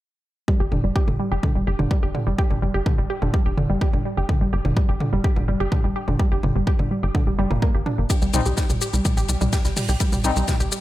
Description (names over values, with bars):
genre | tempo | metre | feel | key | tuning
melodic techno | 126 BPM | 4/4 | straight | G minor | A4 = 440 Hz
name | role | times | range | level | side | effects
wide unison pluck | arpeggios | 0.5-10.8 s | D3 to G4 | -26 LUFS | right 1 dB | sidechain pumping, analog delay
electronic kick drum | drums | 0.5-10.6 s | none | -21 LUFS | equal | none
tight sequencer bass | bass | 0.6-10.7 s | F1 to C2 | -23 LUFS | equal | sidechain pumping
electronic toms and shaker | drums | 0.7-10.8 s | none | -28 LUFS | right 1 dB | none
damped 70s drum kit | drums | 8.1-10.8 s | hi-hat, ride cymbal, snare drum | -34 LUFS | left 2 dB | sidechain pumping on cymbals, high-pass filter on cymbals, sidechain pumping on hats, high-pass filter on hats, high-pass filter on snare, high-pass filter on room
analog synth brass | stabs | 8.3-10.3 s | G3 to Eb4 | -26 LUFS | left 4 dB | chorus, cassette tape, sidechain pumping, analog delay
room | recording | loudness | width
light reverb, studio reverb | none | -19 LUFS | side -15 dB against mid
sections
0.5-10.8 A section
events
filter sweep on analog synth bass 0.5-10.8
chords
0.5 G5; 8.1 C5